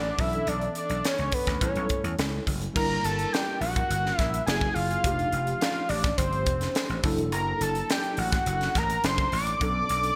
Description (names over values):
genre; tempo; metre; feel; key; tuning
polished 1980s jazz-funk pop; 105 BPM; 4/4; straight; unclear; A4 = 441 Hz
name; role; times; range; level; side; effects
fat analog lead; melody; 0.0-10.2 s; B4 to D6; -30 LUFS; equal; none
mellow tine electric piano; accompaniment; 0.0-10.2 s; E3 to Bb4; -36 LUFS; equal; ensemble chorus
vintage slap bass; bass; 0.0-10.1 s; E1 to E2; -33 LUFS; equal; none
crisp fusion drum kit; drums; 0.2-10.2 s; crash cymbal, hi-hat, kick drum, snare drum; -32 LUFS; equal; gated reverb
room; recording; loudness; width
light reverb, small room ambience; bright 1980s-style digital production; -27 LUFS; mono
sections
0.0-2.8 A section; 2.8-10.2 B section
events
none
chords
0.2 Bm11; 1.6 A7; 2.8 Gm6; 4.5 F#9; 5.0 F13; 7.0 F#7alt; 9.6 Bm9